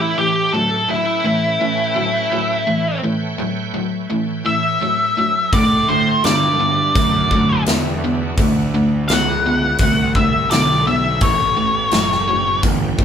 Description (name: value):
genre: blues rock power trio and southern rock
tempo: 84 BPM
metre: 4/4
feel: straight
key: A mixolydian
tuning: A4 = 440 Hz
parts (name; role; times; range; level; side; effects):
- octave-fuzz lead guitar; melody; 0.0-12.6 s; E4 to F#5; -17 LUFS; left 1 dB; distortion
- bright tonewheel organ; sustained chords; 0.0-13.0 s; A3 to G5; -29 LUFS; right 4 dB; overdrive, chorus vibrato, slow rotary speaker
- crunchy overdriven guitar; riff; 0.0-13.0 s; A2 to B3; -20 LUFS; equal; none
- fuzz picked electric bass; bass; 5.5-13.0 s; F#1 to A2; -23 LUFS; equal; overdrive
- big rock drum kit; drums; 5.5-13.0 s; hi-hat, kick drum, snare drum; -20 LUFS; equal; none
room: moderate large studio reverb, RT60 1.3 s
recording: band playing live in one room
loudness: -14 LUFS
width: side -8 dB against mid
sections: 0.0-13.0 A section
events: none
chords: 0.0 A7; 5.5 D7; 11.2 A7